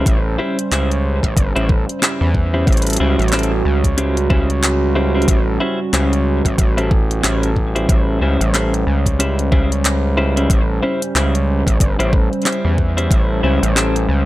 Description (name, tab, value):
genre	glitch hop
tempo	92 BPM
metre	4/4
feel	swing 59% on 16ths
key	unclear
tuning	A4 = 440 Hz
part	dark analog pad	sustained chords	0.0-14.3 s	G3 to B#4	-22 LUFS	right 2 dB	lush chorus, sidechain pumping
part	clean electric guitar	stabs	0.0-13.9 s	C#4 to B#4	-22 LUFS	left 1 dB	sidechain pumping, digital delay
part	gritty driven synth bass	bass	0.0-14.3 s	G1 to E2	-17 LUFS	equal	distortion, tube saturation
part	electronic kick drum	drums	0.1-13.3 s	none	-16 LUFS	equal	overdrive
part	pop drum kit	drums	0.1-14.1 s	handclaps, hi-hat, rim click	-21 LUFS	equal	overdrive
room	digital ambience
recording	none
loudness	-14 LUFS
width	side -16 dB against mid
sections	0.0-14.3 A section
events	none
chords	0.0 A7#9